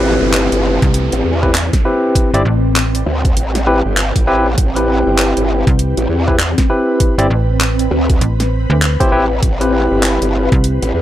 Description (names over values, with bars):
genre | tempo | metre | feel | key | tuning
glitch hop | 99 BPM | 4/4 | swing 61% on 16ths | A minor | A4 = 442 Hz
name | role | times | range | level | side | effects
barky tine electric piano | stabs | 0.0-11.0 s | C4 to D5 | -16 LUFS | left 1 dB | overdrive, sidechain pumping, analog delay
growl bass | bass | 0.0-11.0 s | G1 to E2 | -17 LUFS | equal | chorus, tube saturation
downlifter | sound effects | 0.0-4.6 s | none | -24 LUFS | right 1 dB | none
ethereal airy pad | texture | 0.2-11.0 s | C4 to B5 | -22 LUFS | equal | ensemble chorus, built-in reverb, phaser, sidechain pumping
pop drum kit | drums | 0.3-10.9 s | handclaps, hi-hat, snare drum | -18 LUFS | equal | overdrive
slap-like FM bass | bass | 0.8-10.8 s | G1 to D2 | -14 LUFS | equal | none
electronic kick drum | drums | 0.8-10.6 s | none | -15 LUFS | equal | overdrive
room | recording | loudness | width
digital ambience | dry, gritty hardware recording | -12 LUFS | side -13 dB against mid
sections
0.0-11.0 A section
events
none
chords
0.0 Am9